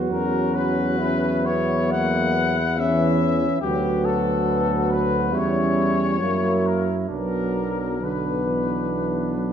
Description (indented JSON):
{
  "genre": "classical, hymn-like piece for brass band",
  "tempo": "63-72 BPM",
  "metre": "4/4",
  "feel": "rubato",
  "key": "B minor",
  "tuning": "A4 = 440 Hz",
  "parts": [
    { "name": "warm flugelhorn", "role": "second line", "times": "0.0-9.5 s", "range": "D4 to F#4", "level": "-29 LUFS", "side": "right 6 dB", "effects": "none" },
    { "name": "dark trombone", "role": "accompaniment", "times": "0.0-9.5 s", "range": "D3 to G3", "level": "-27 LUFS", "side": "right 4 dB", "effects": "none" },
    { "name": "mellow trombone section", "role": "accompaniment", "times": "0.0-9.5 s", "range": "A#3 to C#4", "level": "-27 LUFS", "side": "left 2 dB", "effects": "none" },
    { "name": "warm tuba", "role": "bass", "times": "0.0-9.5 s", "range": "B1 to F#2", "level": "-25 LUFS", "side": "equal", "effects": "none" },
    { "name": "warm trumpet section", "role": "melody", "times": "0.1-9.5 s", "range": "G4 to F#5", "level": "-26 LUFS", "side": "left 6 dB", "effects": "none" }
  ],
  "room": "wet recital hall reverb, RT60 1.6 s",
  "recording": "dark, warm production",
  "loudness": "-20 LUFS",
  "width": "side -8 dB against mid",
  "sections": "0.0-9.5 A section",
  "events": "none",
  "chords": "0.1 F#7/E; 3.6 Bm/D; 5.3 C#dim/E; 6.2 F#7; 7.1 Bm"
}